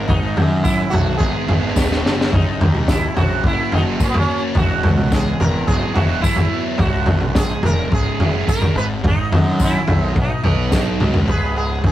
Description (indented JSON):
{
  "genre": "psychedelic rock",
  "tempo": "107 BPM",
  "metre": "4/4",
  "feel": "straight",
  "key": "C# dorian",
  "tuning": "A4 = 441 Hz",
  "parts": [
    { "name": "sitar", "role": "melody", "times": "0.0-11.9 s", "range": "B3 to B4", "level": "-24 LUFS", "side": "right 3 dB", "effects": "none" },
    { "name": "fuzz guitar", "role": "riff", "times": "0.0-11.9 s", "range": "C#2 to B4", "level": "-23 LUFS", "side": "equal", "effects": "distortion, phaser" },
    { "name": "fuzz picked electric bass", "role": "bass", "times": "0.0-11.9 s", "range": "C#1 to F#2", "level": "-21 LUFS", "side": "equal", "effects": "overdrive" },
    { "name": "crunchy breakbeat drum kit", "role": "drums", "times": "0.1-11.9 s", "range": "kick drum, snare drum, toms", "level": "-18 LUFS", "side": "equal", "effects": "none" },
    { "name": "tambourine", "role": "percussion", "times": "0.6-10.9 s", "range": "none", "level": "-36 LUFS", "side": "left 6 dB", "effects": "none" }
  ],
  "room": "light reverb",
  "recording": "rough rehearsal-room recording, tube saturation",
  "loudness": "-15 LUFS",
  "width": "side -13 dB against mid",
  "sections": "0.0-11.3 A section",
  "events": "drum fill 1.8-2.3, 10.7-11.3",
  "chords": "0.0 G#m; 2.3 F#; 4.6 Eadd9; 6.8 C#m; 8.8 G#m; 10.2 B; 11.3 C#5",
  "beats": "| 0.09 0.65 1.21 1.77 | 2.33 2.89 3.45 4.01 | 4.57 5.13 5.69 6.25 | 6.81 7.37 7.93 8.49 | 9.05 9.61 10.17 10.73 | 11.29 11.85"
}